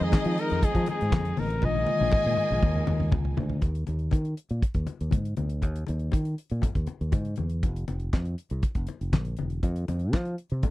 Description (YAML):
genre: disco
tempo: 120 BPM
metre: 4/4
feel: straight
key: unclear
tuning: A4 = 440 Hz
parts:
  - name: clear flugelhorn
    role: melody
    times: 0.0-3.1 s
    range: Ab4 to Eb5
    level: -28 LUFS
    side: left 3 dB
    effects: none
  - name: warm studio violin section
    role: second line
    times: 0.0-3.3 s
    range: Eb4 to Ab5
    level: -36 LUFS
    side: right 2 dB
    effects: none
  - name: mellow tine electric piano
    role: accompaniment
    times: 0.0-3.6 s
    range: D3 to Ab4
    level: -33 LUFS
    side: left 2 dB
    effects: medium stereo tremolo
  - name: clear studio string section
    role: sustained chords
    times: 0.0-3.6 s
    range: F3 to Ab4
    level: -38 LUFS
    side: right 3 dB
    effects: none
  - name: fingered electric bass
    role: bass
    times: 0.0-10.6 s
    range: Fb1 to F3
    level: -28 LUFS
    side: equal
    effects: none
  - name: damped 70s drum kit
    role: drums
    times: 0.1-10.7 s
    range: handclaps, hi-hat, kick drum, snare drum, toms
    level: -26 LUFS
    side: equal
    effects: none
  - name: congas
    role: percussion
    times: 0.1-10.7 s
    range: none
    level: -35 LUFS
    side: left 5 dB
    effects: none
room: little or no reverb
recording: dry, close 1970s-style studio recording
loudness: -25 LUFS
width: side -17 dB against mid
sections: 0.0-3.6 A section; 3.6-10.7 B section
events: drum fill 1.6-3.6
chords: 0.0 Fm7; 1.6 Bb7sus4; 3.6 Eb5; 7.6 F5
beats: 0.13 0.63 1.12 | 1.62 2.12 2.62 3.12 | 3.62 4.12 4.62 5.13 | 5.63 6.13 6.63 7.13 | 7.63 8.13 8.63 9.13 | 9.63 10.13 10.63